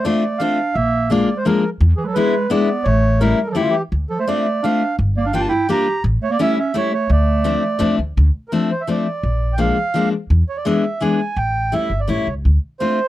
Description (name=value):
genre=musette waltz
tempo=169 BPM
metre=3/4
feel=straight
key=D minor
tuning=A4 = 440 Hz
part: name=mellow accordion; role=melody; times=0.0-13.1 s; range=F4 to Bb5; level=-21 LUFS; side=right 3 dB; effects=none
part: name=breathy clarinet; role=second line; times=0.0-7.9 s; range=D3 to G4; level=-22 LUFS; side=right 3 dB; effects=none
part: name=fingerpicked steel-string acoustic guitar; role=accompaniment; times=0.0-13.0 s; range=E3 to F4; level=-18 LUFS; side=left 4 dB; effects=none
part: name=upright bass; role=bass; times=0.8-12.6 s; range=G1 to E2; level=-17 LUFS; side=equal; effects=tube saturation
room=little or no reverb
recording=dry, close 1970s-style studio recording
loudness=-16 LUFS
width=side -14 dB against mid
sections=0.0-8.2 A section; 8.2-13.1 A section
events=none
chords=0.0 Dm7; 0.8 Bb7; 1.8 E7; 2.9 A7; 3.9 Dm7; 5.0 Gm7; 6.0 A7; 7.1 Dm7; 9.2 Bb7; 10.3 E7; 11.4 A7; 12.4 Dm7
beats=0.05 0.41 | 0.76 1.10 1.45 | 1.80 2.15 2.50 | 2.85 3.21 3.56 | 3.92 4.28 4.63 | 4.99 5.34 5.69 | 6.04 6.39 6.74 | 7.09 7.45 7.80 | 8.16 8.52 8.88 | 9.23 9.59 9.94 | 10.30 10.65 11.01 | 11.37 11.72 12.09 | 12.45 12.80